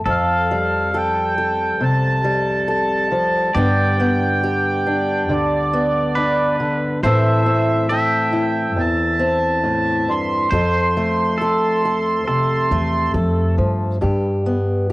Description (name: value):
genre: acoustic folk duo or small band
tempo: 69 BPM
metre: 4/4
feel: straight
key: unclear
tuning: A4 = 441 Hz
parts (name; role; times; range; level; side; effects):
- upright bass; bass; 0.0-14.9 s; C2 to A2; -23 LUFS; equal; none
- mellow accordion; melody; 0.1-13.1 s; D5 to C6; -21 LUFS; right 2 dB; none
- pedal steel guitar; second line; 0.1-13.6 s; A4 to E5; -26 LUFS; right 1 dB; cassette tape
- fingerpicked acoustic archtop guitar; accompaniment; 0.1-14.9 s; E2 to A4; -20 LUFS; left 1 dB; cassette tape
room: light reverb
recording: home recording on cassette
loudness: -16 LUFS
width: side -20 dB against mid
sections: 0.1-14.0 A section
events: none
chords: 0.1 Fadd9; 3.5 G; 7.0 Am; 10.5 F; 14.0 G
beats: | 0.05 0.93 1.80 2.67 | 3.54 4.42 5.29 6.16 | 7.04 7.91 8.78 9.66 | 10.53 11.40 12.28 13.15 | 14.03 14.91